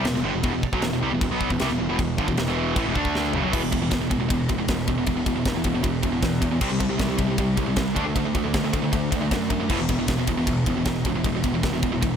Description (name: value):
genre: heavy metal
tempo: 155 BPM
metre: 4/4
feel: straight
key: E minor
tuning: A4 = 440 Hz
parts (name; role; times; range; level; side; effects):
- distorted electric guitar; riff; 0.0-12.2 s; E2 to D4; -27 LUFS; left 11 dB; distortion
- heavy high-gain guitar; riff; 0.0-12.2 s; E2 to D4; -26 LUFS; right 9 dB; distortion
- fuzz picked electric bass; bass; 0.0-12.2 s; E1 to F#2; -29 LUFS; equal; overdrive
- tight metal drum kit; drums; 0.0-12.1 s; crash cymbal, kick drum, ride cymbal, snare drum, toms; -27 LUFS; left 1 dB; none
room: little or no reverb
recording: none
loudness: -21 LUFS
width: side -8 dB against mid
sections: 0.0-3.5 A section; 3.5-12.2 B section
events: drum fill 3.1-3.5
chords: 0.0 Em; 3.0 D5; 3.3 F#sus4; 3.5 E5; 6.6 C5; 8.0 D; 9.7 E5